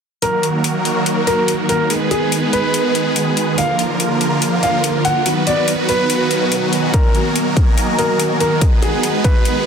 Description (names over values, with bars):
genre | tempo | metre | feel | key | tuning
heavy wobble dubstep | 143 BPM | 4/4 | swing 55% on 16ths, half-time | Eb harmonic minor | A4 = 441 Hz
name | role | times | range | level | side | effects
warm grand piano | melody | 0.2-9.7 s | Ab4 to Gb5 | -20 LUFS | equal | tape echo
supersaw chords | sustained chords | 0.2-9.7 s | D3 to Cb5 | -17 LUFS | right 2 dB | phaser, sidechain pumping
electronic hi-hat | drums | 0.2-9.5 s | none | -22 LUFS | left 4 dB | overdrive
granular cloud pad | texture | 1.8-9.7 s | B3 to Bb5 | -26 LUFS | left 1 dB | built-in reverb, sidechain pumping
electronic kick drum | drums | 6.9-9.3 s | none | -14 LUFS | equal | none
room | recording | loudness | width
light reverb | dense, heavily limited modern master | -14 LUFS | side -6 dB against mid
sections
0.2-9.7 A section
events
fade-in on ambient pad 0.2-9.7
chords
0.2 Ebm; 1.9 Abm; 3.6 Bb; 5.3 B; 6.9 Ebm; 8.6 Abm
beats
| 0.22 0.64 1.06 1.48 | 1.90 2.32 2.74 3.16 | 3.58 4.00 4.42 4.84 | 5.26 5.68 6.10 6.52 | 6.94 7.36 7.78 8.20 | 8.62 9.03 9.45